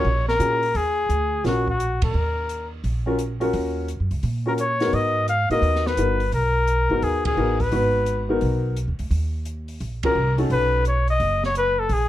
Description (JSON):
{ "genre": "jazz, small-group swing and bop", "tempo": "172 BPM", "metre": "4/4", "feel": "swing 65% on 8ths", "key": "Eb minor", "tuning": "A4 = 440 Hz", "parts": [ { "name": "warm flugelhorn", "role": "melody", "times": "0.0-12.1 s", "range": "Gb4 to F5", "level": "-22 LUFS", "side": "left 2 dB", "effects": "none" }, { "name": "warm baby grand piano", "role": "accompaniment", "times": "0.0-10.8 s", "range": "Cb4 to Cb5", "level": "-24 LUFS", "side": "left 1 dB", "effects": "none" }, { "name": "upright bass", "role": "bass", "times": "0.0-12.1 s", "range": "F#1 to Bb2", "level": "-24 LUFS", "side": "right 1 dB", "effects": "none" }, { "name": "open jazz drum kit", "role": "drums", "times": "0.3-12.0 s", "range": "hi-hat, kick drum, ride cymbal, snare drum", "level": "-32 LUFS", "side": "equal", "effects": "none" } ], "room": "light reverb", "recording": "none", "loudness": "-20 LUFS", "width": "side -13 dB against mid", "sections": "0.0-12.1 A section", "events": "band accent 2.0, 7.2, 10.0", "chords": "0.0 Ebm7; 4.9 Abm9; 9.1 Ebm7; 10.5 B7" }